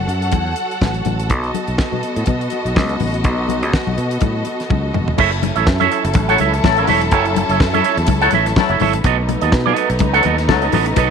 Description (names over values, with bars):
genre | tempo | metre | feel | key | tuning
disco | 124 BPM | 4/4 | swing 56% on 16ths | F# dorian | A4 = 441 Hz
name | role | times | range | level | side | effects
clear studio string section | sustained chords | 0.0-11.1 s | F#3 to F#5 | -21 LUFS | left 1 dB | none
fingered electric bass | bass | 0.0-11.1 s | E1 to B2 | -20 LUFS | equal | none
damped 70s drum kit | drums | 0.1-11.1 s | crash cymbal, hi-hat, kick drum, snare drum, toms | -20 LUFS | equal | none
congas | percussion | 0.1-11.1 s | none | -24 LUFS | left 12 dB | none
electric guitar with an envelope filter | accompaniment | 5.2-11.1 s | B3 to F#5 | -17 LUFS | right 14 dB | none
clear horn section | stabs | 6.3-10.6 s | F#3 to A4 | -20 LUFS | left 12 dB | none
room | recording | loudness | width
light reverb | 1960s-style stereo with parts hard left and right | -14 LUFS | side -6 dB against mid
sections
0.0-5.2 A section; 5.2-11.1 B section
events
drum fill 4.7-5.2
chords
0.0 F#m7; 1.3 B7; 5.2 F#m7; 9.0 B7